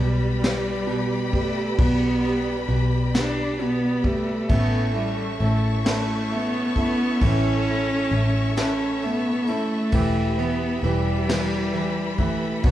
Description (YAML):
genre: six-eight pop ballad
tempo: 44 BPM (dotted quarters)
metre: 6/8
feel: straight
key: unclear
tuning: A4 = 440 Hz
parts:
  - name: warm cello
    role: melody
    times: 0.0-12.7 s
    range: G3 to D4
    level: -25 LUFS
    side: equal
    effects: none
  - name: clear concert grand piano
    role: accompaniment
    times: 0.0-12.7 s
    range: B2 to E4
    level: -29 LUFS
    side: right 3 dB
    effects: none
  - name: warm studio string section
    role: sustained chords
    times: 0.0-12.7 s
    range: F#4 to C#6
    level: -30 LUFS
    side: equal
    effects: none
  - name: vintage muted fingered electric bass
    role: bass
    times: 0.0-12.7 s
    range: E1 to B1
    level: -25 LUFS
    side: equal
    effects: none
  - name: vintage brush drum kit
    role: drums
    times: 0.4-12.7 s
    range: kick drum, ride cymbal, snare drum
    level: -27 LUFS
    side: equal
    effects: none
  - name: fingerpicked steel-string acoustic guitar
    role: arpeggios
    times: 4.5-12.7 s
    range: A2 to A4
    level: -30 LUFS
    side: equal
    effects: none
room: wet large studio reverb, RT60 1.1 s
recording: band playing live in one room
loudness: -20 LUFS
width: side -13 dB against mid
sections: 0.0-12.7 A section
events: none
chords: 0.0 G/B; 4.5 A; 9.9 Em